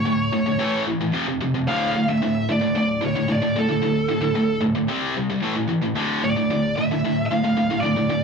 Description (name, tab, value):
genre	metal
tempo	112 BPM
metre	4/4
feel	straight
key	D minor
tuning	A4 = 440 Hz
part	high-gain lead guitar	melody	0.0-8.2 s	A4 to F5	-24 LUFS	right 1 dB	distortion
part	tight distorted guitar	riff	0.0-8.2 s	D2 to C4	-21 LUFS	equal	distortion
room	moderate studio reverb, RT60 0.7 s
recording	dark, warm production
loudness	-19 LUFS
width	side -5 dB against mid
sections	0.0-8.2 A section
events	none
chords	0.0 D5; 0.6 A5; 1.1 F5; 1.7 D5; 4.9 C5; 5.4 A5; 6.0 Dm